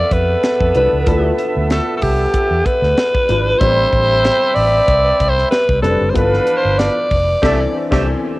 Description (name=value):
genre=polished 1980s jazz-funk pop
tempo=94 BPM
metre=4/4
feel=swing 54% on 16ths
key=D dorian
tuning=A4 = 442 Hz
part: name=growling alto saxophone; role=melody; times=0.0-8.1 s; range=G4 to D5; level=-15 LUFS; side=equal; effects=cassette tape
part: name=mellow horn section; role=second line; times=0.0-8.1 s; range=A3 to B5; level=-22 LUFS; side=right 2 dB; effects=cassette tape, tape echo
part: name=dark baby grand piano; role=accompaniment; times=0.0-8.4 s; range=E3 to C5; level=-22 LUFS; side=left 2 dB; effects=ensemble chorus, cassette tape
part: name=vintage muted fingered electric bass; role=bass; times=0.0-8.1 s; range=F1 to F2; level=-19 LUFS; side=equal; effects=none
part: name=crisp fusion drum kit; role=drums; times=0.1-8.1 s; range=crash cymbal, hi-hat, kick drum, snare drum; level=-20 LUFS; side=equal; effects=cassette tape
room=light reverb, small room ambience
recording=home recording on cassette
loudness=-12 LUFS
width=side -19 dB against mid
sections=0.0-8.4 A section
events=band accent 7.4-8.4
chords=0.0 Dm69; 3.6 Am11; 6.1 G13; 7.4 C69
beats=0.43 | 1.07 1.70 2.34 2.97 | 3.61 4.24 4.88 5.51 | 6.15 6.79 7.42 8.06